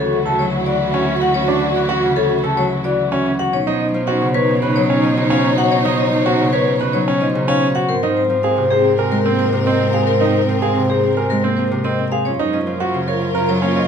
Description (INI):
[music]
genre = classical, minimalist pattern music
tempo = 110 BPM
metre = 4/4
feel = straight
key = unclear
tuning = A4 = 438 Hz
[part]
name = vibraphone with medium hard mallets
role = melody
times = 0.0-13.9 s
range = G#4 to B5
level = -22 LUFS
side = left 6 dB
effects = none
[part]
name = hollow alto flute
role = second line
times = 0.0-13.9 s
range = B#3 to F#4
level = -24 LUFS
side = right 3 dB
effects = none
[part]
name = Celtic harp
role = accompaniment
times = 0.0-13.9 s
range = B#2 to C#4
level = -20 LUFS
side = left 1 dB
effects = none
[part]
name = warm symphonic string section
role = sustained chords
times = 0.0-13.9 s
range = B#3 to C#5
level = -24 LUFS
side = left 3 dB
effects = none
[part]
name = bright grand piano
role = arpeggios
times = 0.0-13.9 s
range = B#3 to C#5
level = -22 LUFS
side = right 4 dB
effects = none
[part]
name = warm cello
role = bass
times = 0.0-13.9 s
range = D2 to B2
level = -23 LUFS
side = right 3 dB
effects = none
[sound]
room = light reverb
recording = none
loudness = -14 LUFS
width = side -7 dB against mid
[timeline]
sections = 0.0-13.9 A section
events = none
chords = 0.0 Dadd9; 3.5 Badd9; 7.9 G#add9; 12.3 F#maj7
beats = 0.26 0.80 | 1.35 1.90 2.44 2.98 | 3.53 4.08 4.62 5.17 | 5.71 6.26 6.80 7.35 | 7.89 8.44 8.98 9.53 | 10.08 10.62 11.17 11.71 | 12.26 12.80 13.35